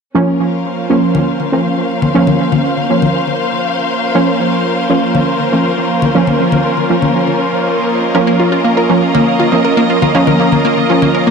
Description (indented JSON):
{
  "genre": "melodic techno",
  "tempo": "120 BPM",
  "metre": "4/4",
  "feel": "straight",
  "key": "Bb minor",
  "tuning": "A4 = 440 Hz",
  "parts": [
    { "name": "lush unison pad", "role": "sustained chords", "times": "0.1-11.3 s", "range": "Bb3 to C5", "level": "-18 LUFS", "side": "right 1 dB", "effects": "chorus" },
    { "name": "synth brass stab", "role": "stabs", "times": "0.1-11.3 s", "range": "F3 to Db4", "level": "-14 LUFS", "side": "right 2 dB", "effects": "chorus, tape echo" },
    { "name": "warm studio string section", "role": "texture", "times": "0.1-11.3 s", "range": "Db4 to F5", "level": "-18 LUFS", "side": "left 2 dB", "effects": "none" },
    { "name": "congas", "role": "drums", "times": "1.1-11.1 s", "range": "none", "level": "-18 LUFS", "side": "left 4 dB", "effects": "tape echo" },
    { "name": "wide unison pluck", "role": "arpeggios", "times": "8.1-11.3 s", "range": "Bb3 to Bb4", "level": "-14 LUFS", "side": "right 1 dB", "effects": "tape echo" }
  ],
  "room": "moderate plate reverb, RT60 1.9 s, digital ambience",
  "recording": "echo-heavy mix",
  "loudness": "-11 LUFS",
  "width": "side -5 dB against mid",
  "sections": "0.1-11.3 A section",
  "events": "none",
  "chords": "0.1 Bbm"
}